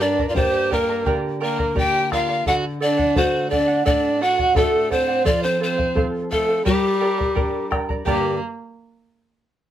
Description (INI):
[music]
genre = andean folk, Andean ensemble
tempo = 86 BPM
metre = 2/4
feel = straight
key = G minor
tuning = A4 = 436 Hz
[part]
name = breathy bright pan flute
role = melody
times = 0.0-8.4 s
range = G4 to G5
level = -21 LUFS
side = left 2 dB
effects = none
[part]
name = dark violin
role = second line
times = 0.0-8.4 s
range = G3 to G4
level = -25 LUFS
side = right 4 dB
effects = none
[part]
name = charango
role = accompaniment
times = 0.0-8.3 s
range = G4 to Bb5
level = -26 LUFS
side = right 5 dB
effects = none
[part]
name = nylon-string guitar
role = accompaniment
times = 0.0-8.4 s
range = G2 to Bb4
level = -27 LUFS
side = left 3 dB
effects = none
[part]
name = bombo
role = percussion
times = 0.2-8.4 s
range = none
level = -25 LUFS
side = left 1 dB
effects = none
[sound]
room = light reverb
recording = none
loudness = -18 LUFS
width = side -11 dB against mid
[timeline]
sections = 0.0-8.1 A section; 8.1-9.5 B section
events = none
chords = 0.0 Gm; 2.5 D; 5.3 F; 6.7 Gm